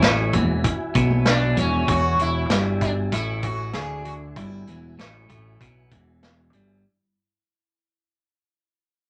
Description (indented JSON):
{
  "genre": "psychedelic rock",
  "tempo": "97 BPM",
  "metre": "4/4",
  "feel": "straight",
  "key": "E mixolydian",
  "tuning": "A4 = 440 Hz",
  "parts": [
    { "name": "sitar", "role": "melody", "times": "0.0-6.5 s", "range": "C#4 to G#4", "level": "-29 LUFS", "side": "equal", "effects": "none" },
    { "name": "mellow tonewheel organ", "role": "sustained chords", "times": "0.0-6.8 s", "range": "F#4 to G#5", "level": "-38 LUFS", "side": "equal", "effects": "chorus vibrato" },
    { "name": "twelve-string electric guitar", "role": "riff", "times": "0.0-6.8 s", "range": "E2 to D3", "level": "-29 LUFS", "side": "equal", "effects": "none" },
    { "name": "growling fingered electric bass", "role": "bass", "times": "0.0-6.8 s", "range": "E1 to D2", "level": "-28 LUFS", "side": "equal", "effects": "overdrive" },
    { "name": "vintage drum kit", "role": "drums", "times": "0.0-6.7 s", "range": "hi-hat, kick drum, snare drum", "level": "-26 LUFS", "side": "equal", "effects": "none" },
    { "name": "congas", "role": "percussion", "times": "0.3-1.7 s", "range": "none", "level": "-31 LUFS", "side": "equal", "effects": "none" }
  ],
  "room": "moderate club reverb, RT60 0.7 s",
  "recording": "none",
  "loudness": "-22 LUFS",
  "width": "mono",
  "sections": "0.0-6.8 A section",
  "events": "fade-out 0.0-6.8",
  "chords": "0.0 Eadd9",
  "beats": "0.02 0.64 1.26 | 1.88 2.50 3.12 3.74 | 4.36 4.98 5.60 6.22"
}